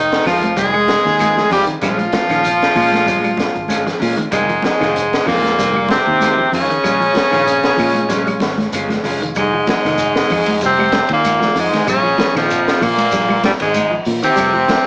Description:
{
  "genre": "afrobeat",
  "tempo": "96 BPM",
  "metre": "4/4",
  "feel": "swing 53% on 16ths",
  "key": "F minor",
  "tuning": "A4 = 440 Hz",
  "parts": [
    { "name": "edgy tenor saxophone", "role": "melody", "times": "0.0-14.8 s", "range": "F3 to Ab4", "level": "-19 LUFS", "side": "equal", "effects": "none" },
    { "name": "raspy baritone saxophone", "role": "second line", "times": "0.0-14.8 s", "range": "F2 to Ab3", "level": "-27 LUFS", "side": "equal", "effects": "none" },
    { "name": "trombone with straight mute", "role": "second line", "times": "0.0-14.8 s", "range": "F2 to Ab3", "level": "-24 LUFS", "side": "equal", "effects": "none" },
    { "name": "fingered electric bass", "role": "bass", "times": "0.0-14.6 s", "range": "F1 to Bb2", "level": "-27 LUFS", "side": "equal", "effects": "none" },
    { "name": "crunchy breakbeat drum kit", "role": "drums", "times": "0.1-14.9 s", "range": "hi-hat, kick drum, ride cymbal, snare drum", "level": "-24 LUFS", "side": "equal", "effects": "none" },
    { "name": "electric guitar at the edge of break-up", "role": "stabs", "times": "0.2-9.2 s", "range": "Eb3 to F4", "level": "-26 LUFS", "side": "equal", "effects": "spring reverb" },
    { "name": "claves", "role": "percussion", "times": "0.2-14.6 s", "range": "none", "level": "-33 LUFS", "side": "equal", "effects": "none" },
    { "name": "electric guitar at the edge of break-up", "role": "arpeggios", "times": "0.3-14.8 s", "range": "Eb3 to Ab3", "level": "-28 LUFS", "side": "equal", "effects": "none" },
    { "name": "congas", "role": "percussion", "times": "0.3-14.9 s", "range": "none", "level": "-27 LUFS", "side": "equal", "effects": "none" },
    { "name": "shekere", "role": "percussion", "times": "0.3-14.9 s", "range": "none", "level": "-36 LUFS", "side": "equal", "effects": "none" }
  ],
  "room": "moderate large studio reverb, RT60 1.2 s",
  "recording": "band playing live in one room, small speaker sound",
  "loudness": "-15 LUFS",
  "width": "mono",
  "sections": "0.0-9.4 A section; 9.4-14.9 A section",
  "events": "drum fill 8.6-9.4",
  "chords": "0.0 Fm7; 1.8 Bbm7; 4.3 Fm7; 6.8 Bbm7; 9.4 Fm7; 11.9 Bb5"
}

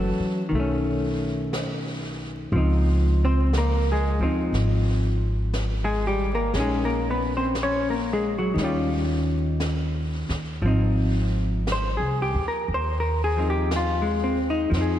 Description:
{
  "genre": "jazz ballad",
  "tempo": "59 BPM",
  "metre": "4/4",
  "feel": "swing 68% on 8ths",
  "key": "unclear",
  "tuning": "A4 = 441 Hz",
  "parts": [
    { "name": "vintage hollow-body jazz guitar", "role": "accompaniment", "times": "0.0-15.0 s", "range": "D#3 to Db5", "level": "-24 LUFS", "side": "left 1 dB", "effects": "none" },
    { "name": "upright bass", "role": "bass", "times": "0.0-15.0 s", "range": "F#1 to F2", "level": "-25 LUFS", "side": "equal", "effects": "none" },
    { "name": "jazz brush drum kit", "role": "drums", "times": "0.5-15.0 s", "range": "brushed snare drum, hi-hat, snare drum", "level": "-36 LUFS", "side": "equal", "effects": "none" }
  ],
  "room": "moderate lush hall reverb, RT60 2.6 s",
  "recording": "dreamy mix soaked in reverb, vinyl crackle",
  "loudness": "-22 LUFS",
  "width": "side -11 dB against mid",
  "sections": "0.0-15.0 A section",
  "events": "none",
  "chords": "0.0 F#7(no3); 0.5 B9; 2.5 Dbmaj9; 6.5 Bbm11; 8.6 Eb9; 10.6 Ab6"
}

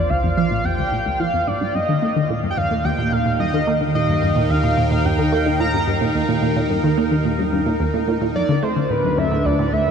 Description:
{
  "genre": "ambient, sequencer-driven space music",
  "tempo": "109 BPM",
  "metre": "4/4",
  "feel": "straight",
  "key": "Eb major",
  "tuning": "A4 = 435 Hz",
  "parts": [
    { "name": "pulse-width lead", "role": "melody", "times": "0.0-9.9 s", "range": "Cb5 to Bb5", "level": "-22 LUFS", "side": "equal", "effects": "chorus, shimmer reverb, ping-pong delay" },
    { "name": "evolving wavetable pad", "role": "sustained chords", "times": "0.0-9.9 s", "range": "Bb3 to G5", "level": "-25 LUFS", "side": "right 1 dB", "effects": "phaser, built-in reverb, shimmer reverb" },
    { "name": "analog drone", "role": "bass", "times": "0.0-9.9 s", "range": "Bb1 to Eb2", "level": "-24 LUFS", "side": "equal", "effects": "chorus" },
    { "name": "resonant blip pluck", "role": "riff", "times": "0.1-9.9 s", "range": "D2 to Bb3", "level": "-20 LUFS", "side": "right 1 dB", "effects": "chorus, phaser, ping-pong delay" }
  ],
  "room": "wet huge ambient reverb, RT60 7.7 s",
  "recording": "dark, warm production",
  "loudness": "-17 LUFS",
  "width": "side -7 dB against mid",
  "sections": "0.0-9.9 A section",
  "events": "fade-in on ambient pad 0.0-9.9; filter sweep on synth arpeggio sound 0.0-9.9",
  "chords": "0.0 Bb; 1.7 Eb; 8.4 D"
}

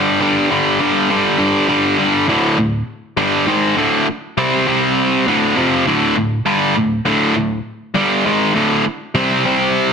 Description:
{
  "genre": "rock",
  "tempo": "100 BPM",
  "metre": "4/4",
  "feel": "straight",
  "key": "D minor",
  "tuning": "A4 = 439 Hz",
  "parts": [
    { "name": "overdriven electric guitar", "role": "solo", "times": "0.0-9.9 s", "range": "D2 to C4", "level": "-13 LUFS", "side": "equal", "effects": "none" }
  ],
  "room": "light reverb, digital ambience",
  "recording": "dense, heavily limited modern master",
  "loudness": "-13 LUFS",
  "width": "side -6 dB against mid",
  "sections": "0.0-2.3 A section; 2.3-9.9 B section",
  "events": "none",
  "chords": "0.0 G5; 2.3 D5; 4.7 C5; 5.3 Dm"
}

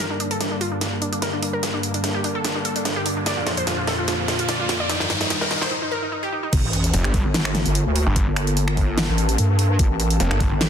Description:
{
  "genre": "heavy wobble dubstep",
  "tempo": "147 BPM",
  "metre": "4/4",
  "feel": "swing 53% on 16ths, half-time",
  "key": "G minor",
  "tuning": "A4 = 441 Hz",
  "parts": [
    { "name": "wide unison pluck", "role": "melody", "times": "0.0-6.5 s", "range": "D4 to D5", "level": "-26 LUFS", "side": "equal", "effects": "ping-pong delay" },
    { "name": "lush unison pad", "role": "sustained chords", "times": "0.0-10.7 s", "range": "F2 to A4", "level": "-28 LUFS", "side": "equal", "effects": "chorus, sidechain pumping" },
    { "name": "dubstep drum kit", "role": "drums", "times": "0.0-10.7 s", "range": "crash cymbal, finger snaps, hi-hat, snare drum", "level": "-25 LUFS", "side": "equal", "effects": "overdrive, high-pass filter on snare, high-pass filter on hats, high-pass filter on cymbals, high-pass filter on room" },
    { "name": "riser and sub drop", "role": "sound effects", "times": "0.0-8.2 s", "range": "none", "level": "-30 LUFS", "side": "equal", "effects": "none" },
    { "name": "wobble bass", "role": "bass", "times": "6.5-10.7 s", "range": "G1 to G2", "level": "-20 LUFS", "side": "equal", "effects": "chorus, overdrive" },
    { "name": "electronic kick drum", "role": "drums", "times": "6.5-10.5 s", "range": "none", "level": "-21 LUFS", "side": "equal", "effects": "overdrive" },
    { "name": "snarling distorted saw bass", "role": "bass", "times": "6.9-10.5 s", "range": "F1 to G1", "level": "-21 LUFS", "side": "equal", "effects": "distortion, overdrive" }
  ],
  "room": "light reverb",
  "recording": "dense, heavily limited modern master",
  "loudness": "-19 LUFS",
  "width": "side -8 dB against mid",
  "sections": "0.0-6.5 A section; 6.5-10.7 B section",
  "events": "build-up 0.0-6.5; drum fill 0.0-5.7; riser 0.0-5.7; filter sweep on analog synth pad 0.0-6.5; break 5.7-6.5; drop 6.5-10.7; impact 6.5-8.2",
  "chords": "0.0 Gm; 3.3 Bb/F; 4.9 Ebadd9/G; 6.5 Gmadd9"
}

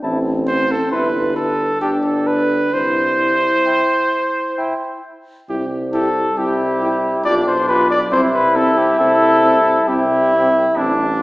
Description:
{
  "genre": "classical, brass quintet",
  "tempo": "67 BPM",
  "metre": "3/4",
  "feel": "uneven beats, rubato",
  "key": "C major",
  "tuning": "A4 = 439 Hz",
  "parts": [
    { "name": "mellow cornet", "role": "melody", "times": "0.0-10.8 s", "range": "G4 to C6", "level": "-19 LUFS", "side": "left 1 dB", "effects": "none" },
    { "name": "brilliant trombone", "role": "accompaniment", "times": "0.0-11.2 s", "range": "D4 to E4", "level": "-18 LUFS", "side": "equal", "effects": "none" },
    { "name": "dark French horn", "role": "accompaniment", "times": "0.0-11.2 s", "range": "C4 to F4", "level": "-23 LUFS", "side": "left 1 dB", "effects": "none" },
    { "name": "warm tuba", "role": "bass", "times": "0.0-11.2 s", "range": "G1 to C2", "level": "-23 LUFS", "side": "equal", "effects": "none" },
    { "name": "warm trumpet", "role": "second line", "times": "0.5-10.9 s", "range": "E4 to C5", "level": "-20 LUFS", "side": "right 1 dB", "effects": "none" }
  ],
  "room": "wet scoring stage reverb, RT60 1.6 s",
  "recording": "heard from further back in the room, small speaker sound",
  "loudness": "-14 LUFS",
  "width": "side -19 dB against mid",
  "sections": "0.0-5.5 A section; 5.5-11.2 B section",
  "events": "none",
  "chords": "0.0 Am; 0.9 C/G (rootless); 1.8 G; 2.7 C; 7.3 G7/B; 8.1 C"
}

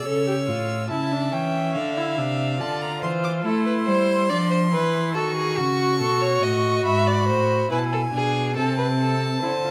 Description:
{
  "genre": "classical, baroque-style fugue for string quartet",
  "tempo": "70 BPM",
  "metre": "4/4",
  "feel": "straight",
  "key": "unclear",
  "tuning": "A4 = 440 Hz",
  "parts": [
    { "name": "clear violin", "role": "melody", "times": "0.0-9.7 s", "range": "F5 to E6", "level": "-31 LUFS", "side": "equal", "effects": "none" },
    { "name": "rich violin", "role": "second line", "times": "0.0-9.7 s", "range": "F#4 to E5", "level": "-28 LUFS", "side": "equal", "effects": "none" },
    { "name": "rich viola", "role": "accompaniment", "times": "0.0-9.7 s", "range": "C4 to A4", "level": "-28 LUFS", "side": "equal", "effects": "none" },
    { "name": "rich cello", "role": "bass", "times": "0.0-9.7 s", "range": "G#2 to A3", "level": "-27 LUFS", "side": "equal", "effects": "none" }
  ],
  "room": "moderate scoring stage reverb, RT60 1.9 s",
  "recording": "close, detailed microphones",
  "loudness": "-22 LUFS",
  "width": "mono",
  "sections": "0.0-9.7 A section",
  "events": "none",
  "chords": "0.1 A7; 1.8 Dm; 3.4 Am; 5.1 B7; 6.9 E7/G#; 8.6 Am/C"
}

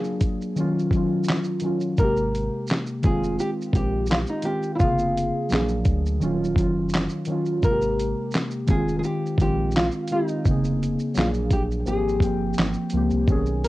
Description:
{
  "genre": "lo-fi hip hop",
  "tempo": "85 BPM",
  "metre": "4/4",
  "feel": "swing 56% on 16ths",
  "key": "Ab major",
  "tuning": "A4 = 440 Hz",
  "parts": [
    { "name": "nylon-string guitar", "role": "melody", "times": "0.0-13.7 s", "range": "Eb4 to Bb4", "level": "-27 LUFS", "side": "equal", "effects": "cassette tape, plate reverb" },
    { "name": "muted felt-like synth keys", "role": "accompaniment", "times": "0.0-13.7 s", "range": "C3 to G5", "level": "-24 LUFS", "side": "equal", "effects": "chorus, phaser, cassette tape" },
    { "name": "dusty soul sampler-style drum kit", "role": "drums", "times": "0.0-13.7 s", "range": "handclaps, hi-hat, kick drum, shaker, snare drum", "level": "-23 LUFS", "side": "equal", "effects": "cassette tape" },
    { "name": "soft dub sub bass", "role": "bass", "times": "2.0-13.7 s", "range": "Eb1 to D2", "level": "-28 LUFS", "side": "equal", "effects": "tube saturation" }
  ],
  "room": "moderate studio reverb, RT60 0.6 s",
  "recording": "home recording on cassette",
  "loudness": "-21 LUFS",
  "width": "side -17 dB against mid",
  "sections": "0.0-13.3 A section",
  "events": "break 0.0-2.0",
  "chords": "0.0 Bb7b13; 0.6 Ebm9; 2.0 Abmaj9; 3.0 Fm7; 4.8 Bbm9/F; 5.5 Bb7b13; 6.2 Ebm9; 7.6 Abmaj9; 8.7 Fm7; 10.5 Bbm9/F; 11.2 Bb7b13; 11.9 Abmaj13"
}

